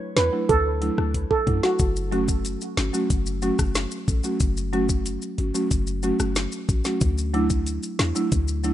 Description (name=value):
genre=dancehall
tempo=92 BPM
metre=4/4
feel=straight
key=F# phrygian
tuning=A4 = 440 Hz
part: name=steel pan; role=melody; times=0.2-1.7 s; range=F#4 to B4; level=-24 LUFS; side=right 3 dB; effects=ping-pong delay
part: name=buzzing marimba with medium mallets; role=accompaniment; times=0.2-8.7 s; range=F#3 to A4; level=-26 LUFS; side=right 1 dB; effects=sidechain pumping
part: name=warm 808-style bass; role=bass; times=0.2-8.7 s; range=F#1 to F#2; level=-26 LUFS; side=left 1 dB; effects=none
part: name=afro-pop drum kit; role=drums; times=0.2-8.7 s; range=hi-hat, kick drum, rim click, snare drum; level=-26 LUFS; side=left 1 dB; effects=none
part: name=maracas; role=percussion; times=1.8-8.7 s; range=none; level=-34 LUFS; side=left 5 dB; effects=none
room=little or no reverb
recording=rough home demo mix, nothing above 11.0 kHz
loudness=-21 LUFS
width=side -12 dB against mid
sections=0.0-1.8 A section; 1.8-8.7 B section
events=drum fill 1.1-1.8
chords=0.0 Dadd9; 1.8 F#m; 7.0 Dadd9